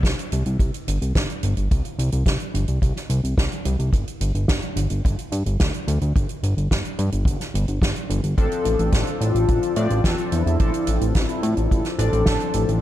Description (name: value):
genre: synthwave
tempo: 108 BPM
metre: 4/4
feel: straight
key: D minor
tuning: A4 = 441 Hz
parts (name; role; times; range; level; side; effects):
- fat analog bass; bass; 0.0-12.8 s; G1 to A2; -22 LUFS; equal; sidechain pumping
- kick drum; drums; 0.0-12.4 s; none; -24 LUFS; equal; none
- soft-mallet drum kit; drums; 0.0-12.8 s; hi-hat, snare drum; -28 LUFS; right 1 dB; none
- mellow synth brass; melody; 8.4-12.7 s; E4 to A4; -25 LUFS; left 1 dB; chorus, tape echo
- chorused polysynth; stabs; 8.4-12.8 s; F3 to D5; -27 LUFS; left 3 dB; none
room: light reverb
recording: dark, warm production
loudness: -19 LUFS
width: side -13 dB against mid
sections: 0.0-12.8 A section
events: none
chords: 0.0 C5; 3.9 G5; 8.4 Dm7/A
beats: 0.04 0.60 1.15 | 1.71 2.27 2.82 3.38 | 3.93 4.49 5.04 5.60 | 6.15 6.71 7.26 7.82 | 8.38 8.93 9.49 10.04 | 10.60 11.15 11.71 12.27